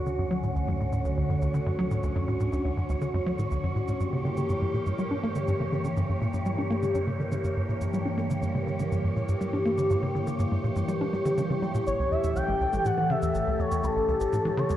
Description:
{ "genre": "ambient, sequencer-driven space music", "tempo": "122 BPM", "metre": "4/4", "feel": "straight", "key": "unclear", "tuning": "A4 = 440 Hz", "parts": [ { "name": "phased analog pad", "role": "sustained chords", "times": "0.0-14.8 s", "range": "D2 to G4", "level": "-29 LUFS", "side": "equal", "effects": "phaser, chorus" }, { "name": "wind-like tuned noise texture", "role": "texture", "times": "0.0-14.8 s", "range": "A4 to C#5", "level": "-36 LUFS", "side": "equal", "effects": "built-in reverb" }, { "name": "tight sequencer bass", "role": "riff", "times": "0.1-14.8 s", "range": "A1 to D4", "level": "-28 LUFS", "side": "equal", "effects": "lush chorus, ping-pong delay" }, { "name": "shaker and congas", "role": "percussion", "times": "0.1-14.8 s", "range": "none", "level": "-43 LUFS", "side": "right 1 dB", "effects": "overdrive, ping-pong delay" }, { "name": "pulse-width lead", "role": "melody", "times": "11.9-14.8 s", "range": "A4 to G5", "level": "-28 LUFS", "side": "equal", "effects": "chorus, ping-pong delay" } ], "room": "wet scoring stage reverb, RT60 2.1 s", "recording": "worn, warbling old tape, cassette tape, warbly pitch drift", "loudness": "-25 LUFS", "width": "side -12 dB against mid", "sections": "0.0-14.8 A section", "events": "fade-in on drum 0.0-14.8", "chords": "0.0 Dmaj7; 4.0 Gm6; 11.9 A7" }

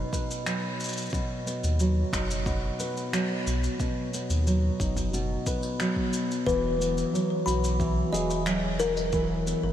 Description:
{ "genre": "folktronica", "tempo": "90 BPM", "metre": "4/4", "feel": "straight", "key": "B major", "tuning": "A4 = 440 Hz", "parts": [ { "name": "felt-muted upright piano", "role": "melody", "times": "0.0-0.7 s", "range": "B4", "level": "-50 LUFS", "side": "left 1 dB", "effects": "none" }, { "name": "nylon-string guitar", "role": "arpeggios", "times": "0.0-9.7 s", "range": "B2 to B4", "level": "-28 LUFS", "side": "right 1 dB", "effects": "diffuse ambient delay" }, { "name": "warm sub bass", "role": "bass", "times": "0.0-9.7 s", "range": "E1 to D#2", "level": "-28 LUFS", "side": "equal", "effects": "tube saturation" }, { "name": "electronic kick drum", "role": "drums", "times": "0.1-9.3 s", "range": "none", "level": "-32 LUFS", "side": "equal", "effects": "overdrive" }, { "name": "shaker and finger snaps", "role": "drums", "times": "0.1-9.6 s", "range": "none", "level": "-35 LUFS", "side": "equal", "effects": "none" }, { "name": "kalimba", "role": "second line", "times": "6.5-9.1 s", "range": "A#4 to B5", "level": "-29 LUFS", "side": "left 3 dB", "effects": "ping-pong delay" } ], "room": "wet huge ambient reverb, RT60 3.8 s", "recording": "dreamy mix soaked in reverb, vinyl crackle", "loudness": "-25 LUFS", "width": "side -10 dB against mid", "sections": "0.0-9.7 A section", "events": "none", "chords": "0.0 B; 6.5 Eadd9" }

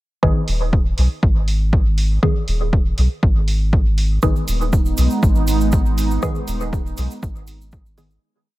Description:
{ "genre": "dub techno", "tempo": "120 BPM", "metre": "4/4", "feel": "straight", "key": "G# minor", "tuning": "A4 = 442 Hz", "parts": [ { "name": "filtered dub chord stab", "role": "stabs", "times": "0.2-8.1 s", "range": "D#3 to G#4", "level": "-24 LUFS", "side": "equal", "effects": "chorus, phaser, sidechain pumping, dub echo" }, { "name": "soft dub sub bass", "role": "bass", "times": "0.2-8.2 s", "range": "D#1 to B1", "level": "-19 LUFS", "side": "equal", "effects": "sidechain pumping" }, { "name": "electronic kick drum", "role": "drums", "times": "0.2-7.8 s", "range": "none", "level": "-17 LUFS", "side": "equal", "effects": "overdrive" }, { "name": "electronic hi-hat", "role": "drums", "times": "0.5-8.1 s", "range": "none", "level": "-32 LUFS", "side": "right 2 dB", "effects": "none" }, { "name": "airy breathy pad", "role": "sustained chords", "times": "4.5-8.2 s", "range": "G#3 to D#4", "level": "-23 LUFS", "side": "right 3 dB", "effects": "chorus, sidechain pumping" }, { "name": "cabasa", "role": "percussion", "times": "4.2-8.2 s", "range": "none", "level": "-35 LUFS", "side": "right 3 dB", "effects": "none" } ], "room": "digital ambience", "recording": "echo-heavy mix", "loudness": "-16 LUFS", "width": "side -17 dB against mid", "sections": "0.2-8.2 groove", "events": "filter sweep on synth stab 0.2-8.2; fade-out 5.6-8.2", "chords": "0.2 G#m" }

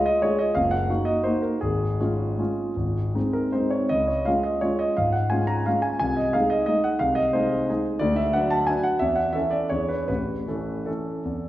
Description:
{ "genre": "classical, piano waltz", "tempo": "149-188 BPM", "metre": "3/4", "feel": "rubato", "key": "Db major, A major from 8.0 s", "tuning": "A4 = 441 Hz", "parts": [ { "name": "clear grand piano", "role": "solo", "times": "0.0-11.5 s", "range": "Gb1 to Bb5", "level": "-21 LUFS", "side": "equal", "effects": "none" } ], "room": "wet recital hall reverb, RT60 1.5 s", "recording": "heard from further back in the room", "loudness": "-21 LUFS", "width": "side -14 dB against mid", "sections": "0.0-11.5 A section", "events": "none", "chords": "0.0 Db; 0.6 Ebm/Gb; 1.6 Db/Ab; 2.8 Ab; 3.9 Db; 6.0 Ab/C; 8.0 Bm/D; 9.0 A/E; 9.7 E7; 10.1 A" }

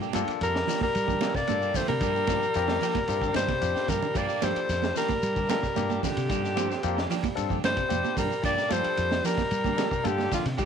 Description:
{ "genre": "afrobeat", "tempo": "112 BPM", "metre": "4/4", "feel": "straight", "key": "G minor", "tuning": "A4 = 439 Hz", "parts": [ { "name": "barky tine electric piano", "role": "accompaniment", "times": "0.0-10.4 s", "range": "Bb3 to A4", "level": "-35 LUFS", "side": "left 15 dB", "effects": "overdrive" }, { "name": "semi-hollow electric guitar", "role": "arpeggios", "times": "0.0-10.7 s", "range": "C3 to G3", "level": "-38 LUFS", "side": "left 9 dB", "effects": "wide subtle chorus" }, { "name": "semi-hollow electric guitar", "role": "stabs", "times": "0.0-10.7 s", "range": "F3 to G4", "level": "-35 LUFS", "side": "right 14 dB", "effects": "harmonic tremolo" }, { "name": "shekere", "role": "percussion", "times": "0.0-10.7 s", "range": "none", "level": "-41 LUFS", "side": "left 9 dB", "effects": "none" }, { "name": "fingered electric bass", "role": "bass", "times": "0.1-10.7 s", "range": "F2 to G3", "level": "-32 LUFS", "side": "equal", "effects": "none" }, { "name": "crunchy breakbeat drum kit", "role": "drums", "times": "0.1-10.7 s", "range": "hi-hat, kick drum, ride cymbal, snare drum", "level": "-34 LUFS", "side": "equal", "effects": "none" }, { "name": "congas", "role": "percussion", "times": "0.1-10.5 s", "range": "none", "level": "-34 LUFS", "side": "right 14 dB", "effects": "none" }, { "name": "breathy alto saxophone", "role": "melody", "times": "0.4-10.7 s", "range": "F4 to D5", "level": "-28 LUFS", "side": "left 3 dB", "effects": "none" }, { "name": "raspy tenor saxophone", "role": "second line", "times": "0.4-10.7 s", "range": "D3 to Bb3", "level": "-35 LUFS", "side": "right 12 dB", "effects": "none" }, { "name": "clear bass trombone", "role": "second line", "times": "6.6-7.5 s", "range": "G3 to C4", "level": "-37 LUFS", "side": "right 12 dB", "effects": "none" } ], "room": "light reverb, small room reverb", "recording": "1960s-style stereo with parts hard left and right", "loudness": "-24 LUFS", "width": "side -7 dB against mid", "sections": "0.0-10.7 A section", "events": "drum fill 3.4-4.2", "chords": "0.0 Gm7; 2.0 Bb6; 4.2 Gm7" }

